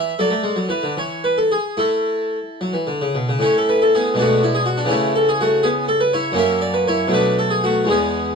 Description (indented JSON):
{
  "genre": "classical, baroque-style suite movement for harpsichord",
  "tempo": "72-84 BPM (dotted quarters)",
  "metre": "6/8",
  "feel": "rubato",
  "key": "A major",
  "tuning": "A4 = 440 Hz",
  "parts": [
    { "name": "harpsichord", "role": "solo", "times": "0.0-8.4 s", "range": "E2 to E5", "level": "-16 LUFS", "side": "equal", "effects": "none" }
  ],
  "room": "moderate small room reverb, RT60 0.5 s",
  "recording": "worn, warbling old tape, cassette tape, warbly pitch drift",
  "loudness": "-16 LUFS",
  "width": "side -5 dB against mid",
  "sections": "0.0-3.4 A section; 3.4-8.4 B section",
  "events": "none",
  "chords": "0.2 D/F#; 1.0 N.C.; 1.8 A; 4.2 Bm6; 4.9 A/C#; 6.4 F#7; 7.1 Bm7"
}